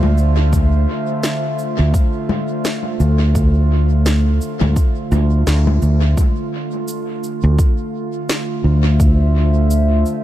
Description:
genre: ambient dub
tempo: 85 BPM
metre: 4/4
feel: swing 58% on 16ths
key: D minor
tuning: A4 = 439 Hz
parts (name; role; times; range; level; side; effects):
- warbly tape-like pad; sustained chords; 0.0-10.2 s; D3 to E5; -22 LUFS; right 1 dB; chorus, built-in reverb
- fingered electric bass; bass; 0.0-10.0 s; D2; -13 LUFS; equal; none
- electronic congas, cabasa and snare drum; drums; 0.0-10.2 s; none; -24 LUFS; left 2 dB; small room ambience, dub echo
- electronic kick drum; drums; 0.5-9.2 s; none; -15 LUFS; equal; small room ambience
room: little or no reverb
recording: echo-heavy mix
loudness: -14 LUFS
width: side -13 dB against mid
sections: 0.0-6.2 A section; 6.2-10.2 B section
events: band accent 5.5-5.8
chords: 0.0 Dm7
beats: | 0.53 1.23 1.94 2.65 | 3.35 4.06 4.76 5.47 | 6.17 6.88 7.59 8.29 | 9.00 9.70

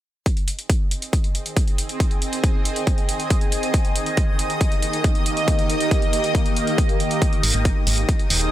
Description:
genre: uplifting trance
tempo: 138 BPM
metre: 4/4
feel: straight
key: Ab major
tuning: A4 = 440 Hz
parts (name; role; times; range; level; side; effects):
- shimmering ambient pad; sustained chords; 1.4-8.5 s; Eb3 to Eb5; -24 LUFS; right 1 dB; chorus, built-in reverb, phaser, sidechain pumping
- electronic hi-hat; drums; 0.3-8.5 s; none; -27 LUFS; right 1 dB; sidechain pumping on hats
- electronic kick drum; drums; 0.3-8.2 s; none; -20 LUFS; equal; overdrive
- solid FM bass; bass; 7.4-8.5 s; Eb1 to Ab1; -22 LUFS; equal; sidechain pumping
room: little or no reverb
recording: none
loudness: -18 LUFS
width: side -13 dB against mid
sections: 0.3-8.5 A section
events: none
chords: 0.3 Ab; 3.7 Eb; 7.2 Ab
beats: | 0.26 0.69 1.13 1.56 | 2.00 2.44 2.87 3.30 | 3.74 4.17 4.61 5.04 | 5.48 5.91 6.35 6.78 | 7.22 7.65 8.09

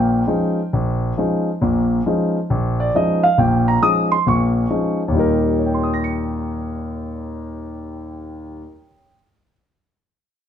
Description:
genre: jazz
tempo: 136 BPM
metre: 4/4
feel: swing 66% on 8ths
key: Eb mixolydian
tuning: A4 = 440 Hz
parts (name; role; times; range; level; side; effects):
- dark concert grand piano; solo; 0.0-9.5 s; Bb1 to Db7; -17 LUFS; equal; none
room: moderate studio reverb, RT60 0.7 s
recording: none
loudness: -16 LUFS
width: side -9 dB against mid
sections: 0.0-5.1 A section; 5.1-8.7 B section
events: none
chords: 0.0 Eb9sus4; 5.1 Eb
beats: 0.28 0.72 1.17 | 1.61 2.05 2.49 2.94 | 3.38 3.82 4.26 4.71 | 5.15 5.59 6.03 6.48 | 6.92 7.36 7.80 8.24

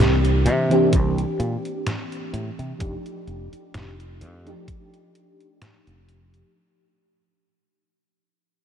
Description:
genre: vaporwave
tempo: 64 BPM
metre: 4/4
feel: swing 54% on 16ths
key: unclear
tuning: A4 = 439 Hz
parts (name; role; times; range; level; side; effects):
- mellow FM electric piano; accompaniment; 0.0-6.6 s; E3 to G4; -23 LUFS; equal; ensemble chorus, ping-pong delay
- fingered electric bass; bass; 0.0-6.4 s; F1 to C3; -23 LUFS; equal; tube saturation
- detuned 8-bit digital drum machine; drums; 0.2-6.5 s; hi-hat, snare drum; -25 LUFS; equal; small room ambience
- electronic kick drum; drums; 0.9-4.9 s; none; -23 LUFS; equal; small room ambience
room: moderate huge ambient reverb, RT60 3.9 s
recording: dreamy mix soaked in reverb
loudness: -20 LUFS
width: side -8 dB against mid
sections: 0.0-6.6 A section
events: fade-out 0.0-6.6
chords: 0.0 C9; 2.8 F13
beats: 0.93 1.87 | 2.81 3.74 4.68 5.62

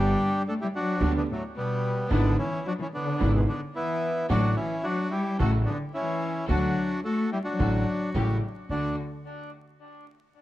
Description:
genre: tango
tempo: 109 BPM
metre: 4/4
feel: rubato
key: D major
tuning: A4 = 439 Hz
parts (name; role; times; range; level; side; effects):
- bandoneon; melody; 0.0-9.0 s; F#3 to A4; -30 LUFS; equal; tape echo
- warm cello; second line; 0.0-9.0 s; A2 to A3; -30 LUFS; left 2 dB; none
- clear concert grand piano; accompaniment; 0.0-8.9 s; G1 to G4; -29 LUFS; right 2 dB; none
- rich symphonic string section; stabs; 0.0-8.9 s; G3 to G4; -39 LUFS; equal; tape echo
- upright bass; bass; 0.0-8.9 s; G1 to D2; -26 LUFS; equal; none
room: moderate studio reverb, RT60 0.5 s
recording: vinyl crackle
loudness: -24 LUFS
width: side -15 dB against mid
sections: 0.0-8.7 A section; 8.7-10.4 B section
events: none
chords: 0.0 G; 2.1 E7/G#; 4.3 D/A; 5.4 A6; 6.5 D; 8.1 A7; 8.7 D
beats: 0.46 1.01 1.56 | 2.11 2.66 3.21 3.75 | 4.30 4.85 5.40 5.95 | 6.49 7.04 7.59 8.14 | 8.70

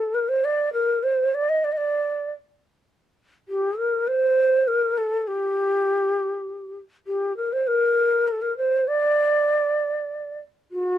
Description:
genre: arabic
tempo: 66 BPM (dotted quarters)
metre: 6/8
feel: straight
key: unclear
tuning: A4 = 441 Hz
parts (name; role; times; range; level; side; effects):
- breathy mellow ney; solo; 0.0-11.0 s; F#4-45c to Eb5; -20 LUFS; equal; none
room: little or no reverb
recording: close, detailed microphones, lossy compression artefacts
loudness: -20 LUFS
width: side -11 dB against mid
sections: 0.0-10.7 A section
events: none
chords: none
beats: 0.75 | 1.65 2.56 | 3.46 4.37 | 5.27 6.18 | 7.08 7.99 | 8.89 9.80 | 10.71

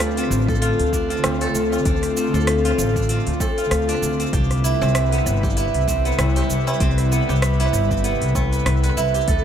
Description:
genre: organic downtempo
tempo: 97 BPM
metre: 4/4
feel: swing 57% on 16ths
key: unclear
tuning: A4 = 438 Hz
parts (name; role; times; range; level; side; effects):
- airy breathy pad; sustained chords; 0.0-9.4 s; C3 to B4; -25 LUFS; left 2 dB; chorus, sidechain pumping
- steel-string zither; arpeggios; 0.0-9.4 s; B3 to B4; -23 LUFS; right 1 dB; vintage 12-bit sampler grit, dub echo
- upright bass; bass; 0.0-9.4 s; G1 to D2; -21 LUFS; equal; tube saturation
- afro-pop drum kit; drums; 0.0-9.4 s; hi-hat, rim click, shaker; -28 LUFS; right 2 dB; tape echo
- tabla; percussion; 0.3-8.5 s; none; -34 LUFS; left 1 dB; none
- electronic kick drum; drums; 0.5-9.4 s; none; -24 LUFS; equal; none
room: light reverb, small room ambience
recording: echo-heavy mix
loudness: -17 LUFS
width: side -9 dB against mid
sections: 0.0-9.4 A section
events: none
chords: 0.0 Dm7; 4.3 Cmaj7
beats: 0.00 0.62 1.24 | 1.85 2.47 3.09 3.71 | 4.33 4.95 5.57 6.18 | 6.80 7.42 8.04 8.66 | 9.28

